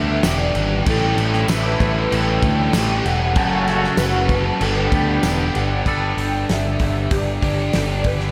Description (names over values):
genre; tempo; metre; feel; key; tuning
rock, shoegaze and dream pop; 96 BPM; 4/4; straight; G lydian; A4 = 441 Hz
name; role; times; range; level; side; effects
warm velvety synth lead; melody; 0.0-8.3 s; D5 to A5; -29 LUFS; equal; chorus, diffuse ambient delay
fingerpicked plugged-in twelve-string acoustic guitar; arpeggios; 0.0-8.3 s; E4 to F#5; -31 LUFS; equal; ensemble chorus, diffuse ambient delay
crunchy overdriven guitar; riff; 0.0-5.9 s; F#2 to A3; -28 LUFS; equal; none
overdriven electric guitar; riff; 0.0-8.3 s; F#2 to A4; -27 LUFS; equal; analog chorus
twangy electric guitar; riff; 0.0-8.3 s; F#2 to A4; -29 LUFS; equal; reverse reverb
growling picked electric bass; bass; 0.0-8.3 s; E1 to D2; -24 LUFS; equal; overdrive
loose indie drum kit; drums; 0.2-8.3 s; crash cymbal, hi-hat, kick drum, snare drum; -25 LUFS; equal; none
tambourine; percussion; 0.2-5.4 s; none; -38 LUFS; equal; none
room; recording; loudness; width
moderate lush hall reverb, RT60 2.7 s; dreamy mix soaked in reverb; -19 LUFS; mono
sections
0.0-5.9 A section; 5.9-8.3 B section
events
none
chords
0.0 Gmaj7; 0.9 A7sus4; 3.4 F#m; 4.6 G; 5.9 Gadd9